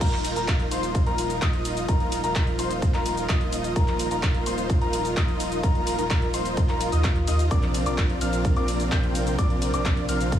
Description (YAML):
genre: EDM, festival progressive house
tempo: 128 BPM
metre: 4/4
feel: straight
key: unclear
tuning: A4 = 440 Hz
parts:
  - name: dark studio string section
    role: sustained chords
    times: 0.0-10.4 s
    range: Bb2 to F4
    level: -34 LUFS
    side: right 1 dB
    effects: sidechain pumping
  - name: clear concert grand piano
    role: arpeggios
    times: 0.0-10.4 s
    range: Bb5 to G6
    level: -32 LUFS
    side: left 4 dB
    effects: sidechain pumping, tape echo
  - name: dense compressed supersaw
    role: riff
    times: 0.0-10.4 s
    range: C4 to G5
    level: -28 LUFS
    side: equal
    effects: sidechain pumping, tape echo
  - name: saturated sub bass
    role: bass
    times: 0.0-10.4 s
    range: Eb1 to Eb2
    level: -30 LUFS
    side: equal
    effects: sidechain pumping
  - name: big-room dance drum kit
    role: drums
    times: 0.0-10.4 s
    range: cabasa, crash cymbal, handclaps, hi-hat, ride cymbal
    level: -32 LUFS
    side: equal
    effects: small room ambience
  - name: electronic kick drum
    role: drums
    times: 0.0-10.4 s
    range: none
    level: -23 LUFS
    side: equal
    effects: small room ambience
room: little or no reverb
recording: small room ambience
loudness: -21 LUFS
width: side -10 dB against mid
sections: 0.0-10.4 A section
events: drop 0.0-10.4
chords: 0.0 Ebsus2; 7.5 Bbadd9